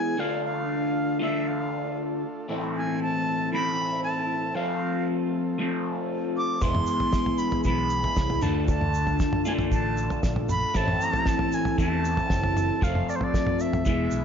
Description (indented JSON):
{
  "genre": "psychedelic rock",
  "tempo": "116 BPM",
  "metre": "4/4",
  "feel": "straight",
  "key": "unclear",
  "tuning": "A4 = 440 Hz",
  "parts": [
    { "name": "bright reedy jazz flute", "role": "melody", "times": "0.0-14.2 s", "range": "C5 to D6", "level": "-29 LUFS", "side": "right 1 dB", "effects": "slapback echo" },
    { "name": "combo organ", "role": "sustained chords", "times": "0.0-14.2 s", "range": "G#3 to A4", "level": "-36 LUFS", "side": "right 2 dB", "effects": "wide subtle chorus" },
    { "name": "electric guitar through a small old amp", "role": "riff", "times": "0.0-14.2 s", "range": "A2 to F4", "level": "-27 LUFS", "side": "left 2 dB", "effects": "phaser" },
    { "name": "fingered electric bass", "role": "bass", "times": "6.6-14.2 s", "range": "E1 to E2", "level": "-29 LUFS", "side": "equal", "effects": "none" },
    { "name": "cloth-damped thuddy drum kit", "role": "drums", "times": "6.6-14.0 s", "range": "kick drum, snare drum, toms", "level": "-27 LUFS", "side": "equal", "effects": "none" },
    { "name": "tube shaker", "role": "percussion", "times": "6.6-14.2 s", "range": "none", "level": "-46 LUFS", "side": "right 9 dB", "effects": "none" }
  ],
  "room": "light reverb, small room ambience",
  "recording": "nothing above 7.6 kHz",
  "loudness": "-23 LUFS",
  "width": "side -7 dB against mid",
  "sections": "0.0-14.2 A section",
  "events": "none",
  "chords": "0.2 Dm; 2.5 Am; 4.6 F; 6.6 E; 8.4 Dm; 10.8 Am; 12.8 F"
}